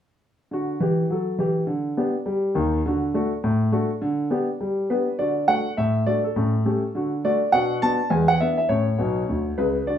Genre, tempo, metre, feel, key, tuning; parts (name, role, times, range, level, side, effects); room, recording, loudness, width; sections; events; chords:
jazz, stride piano; 205 BPM; 4/4; swing 61% on 8ths; D major; A4 = 439 Hz
warm concert grand piano; solo; 0.5-10.0 s; B1 to A5; -20 LUFS; equal
wet small room reverb, RT60 0.6 s; heard from further back in the room; -20 LUFS; side -9 dB against mid
0.5-5.2 A section; 5.2-10.0 B section
grand piano fill 9.0-9.9
0.5 D; 1.7 G/D; 2.9 D; 4.0 G/D; 5.2 D; 6.4 A7; 6.9 D; 7.5 Bm; 8.1 E7; 8.7 A